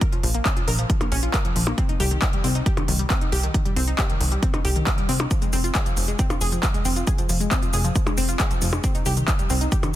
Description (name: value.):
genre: uplifting trance.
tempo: 136 BPM.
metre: 4/4.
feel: straight.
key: F minor.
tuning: A4 = 440 Hz.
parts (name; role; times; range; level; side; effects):
analog pluck; arpeggios; 0.0-9.9 s; Eb3 to Bb4; -28 LUFS; left 2 dB; chorus, phaser, sidechain pumping, tape echo.
electronic kick drum; drums; 0.0-9.8 s; none; -23 LUFS; equal; overdrive.
techno drum kit; drums; 0.0-9.9 s; handclaps, hi-hat, percussion blips, shaker; -26 LUFS; equal; overdrive.
plucky analog bass; bass; 0.2-9.7 s; F1 to C2; -24 LUFS; equal; tube saturation, sidechain pumping.
room: digital ambience.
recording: dense, heavily limited modern master.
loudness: -20 LUFS.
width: side -13 dB against mid.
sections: 0.0-10.0 A section.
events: none.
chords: 0.0 Bb5; 1.8 Cm; 5.3 Fm; 8.8 Cm.